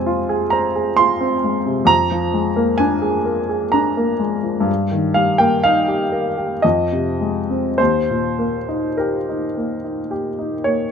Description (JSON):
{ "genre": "classical, romantic nocturne for solo piano", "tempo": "50-68 BPM", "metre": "3/4", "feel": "rubato", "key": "unclear", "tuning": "A4 = 439 Hz", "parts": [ { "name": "warm baby grand piano", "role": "solo", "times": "0.0-10.9 s", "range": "Eb2 to C6", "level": "-16 LUFS", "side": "equal", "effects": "none" } ], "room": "light reverb", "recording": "close, detailed microphones", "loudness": "-16 LUFS", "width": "side -7 dB against mid", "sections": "0.0-10.9 A section", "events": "none", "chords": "0.0 Fm; 1.9 Bb7/F; 4.7 Eb/G; 6.6 Fm7; 7.8 Eb", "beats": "0.07 0.98 | 1.89 2.80 3.74 | 4.68 5.64 6.64 | 7.79 8.98 10.11" }